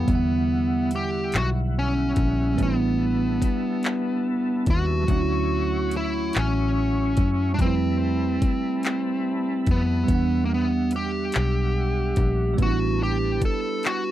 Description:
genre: slow six-eight R&B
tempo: 48 BPM (dotted quarters)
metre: 6/8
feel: straight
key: E dorian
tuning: A4 = 441 Hz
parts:
  - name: dark smooth lead guitar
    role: melody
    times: 0.0-14.1 s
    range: A#3 to A4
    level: -25 LUFS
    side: left 2 dB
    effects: overdrive
  - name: bell-like tine electric piano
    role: accompaniment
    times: 0.0-14.1 s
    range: D3 to B5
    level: -28 LUFS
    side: right 12 dB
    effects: slow stereo tremolo
  - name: tonewheel organ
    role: sustained chords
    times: 0.0-14.1 s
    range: G3 to C#6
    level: -35 LUFS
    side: left 1 dB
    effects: overdrive, chorus vibrato, slow rotary speaker
  - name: vintage muted fingered electric bass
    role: bass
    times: 0.0-13.5 s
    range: A1 to F#2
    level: -25 LUFS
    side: left 1 dB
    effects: none
  - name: smooth R&B drum kit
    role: drums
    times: 0.1-14.0 s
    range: handclaps, hi-hat, kick drum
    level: -24 LUFS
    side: left 1 dB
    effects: none
room: little or no reverb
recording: dry, close 1970s-style studio recording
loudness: -21 LUFS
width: side -13 dB against mid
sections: 0.1-14.1 A section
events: none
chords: 0.1 Em9; 2.6 A9sus4; 5.1 Dmaj9; 7.6 Fmaj9#11; 10.1 Em9; 12.6 A9sus4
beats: | 0.09 1.34 | 2.59 3.84 | 5.09 6.34 | 7.59 8.84 | 10.09 11.34 | 12.59 13.84

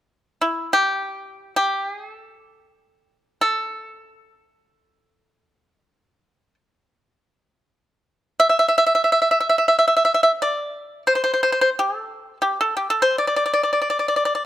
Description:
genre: chinese traditional, Chinese solo plucked strings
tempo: free time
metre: none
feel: none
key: A yu mode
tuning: A4 = 440 Hz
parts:
  - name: pipa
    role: solo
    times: 0.4-14.4 s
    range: E4 to E5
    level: -17 LUFS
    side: equal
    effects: none
room: light reverb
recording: close, detailed microphones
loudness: -17 LUFS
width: side -13 dB against mid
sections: 0.0-14.5 A section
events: none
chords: none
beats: free time

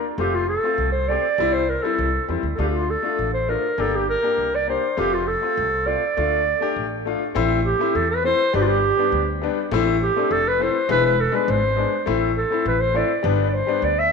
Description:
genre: klezmer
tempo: 101 BPM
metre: 2/4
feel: straight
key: D minor, A minor from 7.4 s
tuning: A4 = 444 Hz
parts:
  - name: bright upright piano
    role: accompaniment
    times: 0.0-13.9 s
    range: G3 to G4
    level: -24 LUFS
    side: left 8 dB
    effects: none
  - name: warm clarinet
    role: melody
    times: 0.2-14.1 s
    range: F4 to E5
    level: -21 LUFS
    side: right 2 dB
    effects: none
  - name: upright bass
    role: bass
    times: 0.2-14.1 s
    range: E1 to E2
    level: -26 LUFS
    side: right 2 dB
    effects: none
room: wet echo chamber reverb, RT60 2.3 s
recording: 1960s-style stereo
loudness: -18 LUFS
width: side -5 dB against mid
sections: 0.0-7.4 A section; 7.4-14.1 B section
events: speeding up 0.0-14.1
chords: 0.2 F; 1.4 C; 2.6 Dm; 3.8 Gm; 5.0 F; 6.2 Dm; 7.4 Am; 8.5 G; 9.7 Am; 10.9 E; 12.1 Am; 13.2 G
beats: | 0.18 0.78 | 1.39 1.99 | 2.59 3.19 | 3.79 4.38 | 4.98 5.58 | 6.17 6.77 | 7.36 7.95 | 8.54 9.13 | 9.72 10.31 | 10.90 11.49 | 12.07 12.66 | 13.24 13.83

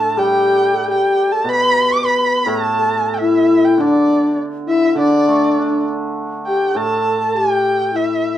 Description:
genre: chinese traditional, Chinese chamber ensemble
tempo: 102 BPM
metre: 4/4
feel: rubato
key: D zhi mode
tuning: A4 = 441 Hz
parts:
  - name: warm erhu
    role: melody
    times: 0.0-8.4 s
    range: D5 to D6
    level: -18 LUFS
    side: right 1 dB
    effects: none
  - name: mellow low xiao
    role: second line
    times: 0.0-8.4 s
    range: D4 to B4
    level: -16 LUFS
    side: left 2 dB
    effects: none
  - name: hammered dulcimer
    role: accompaniment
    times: 0.0-8.4 s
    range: A2 to D4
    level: -22 LUFS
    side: right 3 dB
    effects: none
room: wet studio reverb, RT60 0.6 s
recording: heard from further back in the room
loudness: -13 LUFS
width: side -12 dB against mid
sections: 0.0-8.4 A section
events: none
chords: none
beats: 0.33 0.89 | 1.47 2.04 2.62 3.20 | 3.79 4.38 4.97 5.57 | 6.17 6.77 7.36 7.94

